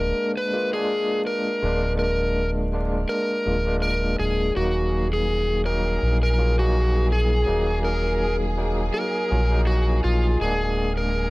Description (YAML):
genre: trip hop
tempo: 82 BPM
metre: 4/4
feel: swing 56% on 16ths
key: Eb harmonic minor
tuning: A4 = 445 Hz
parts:
  - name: overdriven slide guitar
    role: melody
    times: 0.0-11.3 s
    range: F4 to Cb5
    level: -25 LUFS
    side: equal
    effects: tape echo
  - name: overdriven tine electric piano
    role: accompaniment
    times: 0.0-11.3 s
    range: Gb3 to F4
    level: -28 LUFS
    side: equal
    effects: fast tremolo, vintage 12-bit sampler grit
  - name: round analog bass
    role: bass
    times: 0.0-11.3 s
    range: D1 to Bb1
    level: -23 LUFS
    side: equal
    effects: none
  - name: dark studio violin section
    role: sustained chords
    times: 4.5-11.3 s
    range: Ab4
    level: -32 LUFS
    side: equal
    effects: vintage 12-bit sampler grit
room: light reverb, digital ambience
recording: dry, gritty hardware recording, vinyl crackle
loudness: -20 LUFS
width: side -21 dB against mid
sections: 0.0-11.3 A section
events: none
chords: 0.0 Bb7/D; 4.5 Ebm; 10.4 Bb7/D